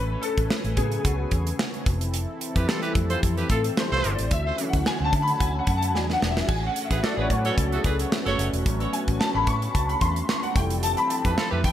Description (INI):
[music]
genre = polished 1980s jazz-funk pop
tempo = 110 BPM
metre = 4/4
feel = swing 54% on 16ths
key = A major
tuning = A4 = 440 Hz
[part]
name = warm grand piano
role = accompaniment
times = 0.0-11.7 s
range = C#3 to C#6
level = -27 LUFS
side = left 2 dB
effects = ensemble chorus
[part]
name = chorused pulse-width pad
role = sustained chords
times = 0.0-11.7 s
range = D3 to G#5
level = -32 LUFS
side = equal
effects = none
[part]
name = vintage muted fingered electric bass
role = bass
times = 0.0-11.7 s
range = E1 to F3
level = -27 LUFS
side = equal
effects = none
[part]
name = modern studio drum kit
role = drums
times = 0.2-11.7 s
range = crash cymbal, hi-hat, kick drum, snare drum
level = -26 LUFS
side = equal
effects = gated reverb
[part]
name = clear horn section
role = second line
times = 2.6-11.6 s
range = A3 to C#5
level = -30 LUFS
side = right 3 dB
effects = digital delay
[sound]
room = light reverb, studio reverb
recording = bright 1980s-style digital production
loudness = -22 LUFS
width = side -11 dB against mid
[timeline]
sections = 0.0-11.7 A section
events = grand piano solo 0.0-11.7; drum fill 5.9-6.5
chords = 0.0 A6; 1.9 Fmaj7; 4.3 Dmaj7; 5.9 E9; 6.5 A6; 10.6 Fmaj7